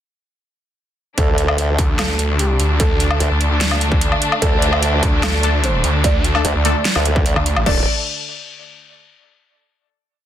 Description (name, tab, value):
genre	heavy wobble dubstep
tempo	148 BPM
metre	4/4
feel	half-time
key	unclear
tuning	A4 = 440 Hz
part	felt-muted upright piano	melody	1.2-7.8 s	G4 to D5	-26 LUFS	right 4 dB	ping-pong delay
part	clear studio string section	sustained chords	1.2-7.9 s	D3 to D5	-23 LUFS	equal	sidechain pumping, low-pass filter
part	formant-sweep wobble bass	bass	1.2-7.9 s	D1 to D2	-17 LUFS	equal	chorus, overdrive
part	dubstep drum kit	drums	1.2-7.7 s	crash cymbal, hi-hat, snare drum, woodblock	-21 LUFS	left 1 dB	studio ambience
part	electronic kick drum	drums	1.2-7.7 s	none	-19 LUFS	equal	distortion, studio ambience
part	snarling distorted saw bass	bass	1.8-7.6 s	A1 to D2	-18 LUFS	equal	distortion, overdrive
part	orchestra-hit-like synth stab	stabs	5.4-7.8 s	A3 to A4	-23 LUFS	left 5 dB	built-in reverb, ping-pong delay
room	little or no reverb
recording	dense, heavily limited modern master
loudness	-14 LUFS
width	side -11 dB against mid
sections	1.2-7.7 drop; 7.7-9.3 final chord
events	drop 1.2-7.7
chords	1.2 D5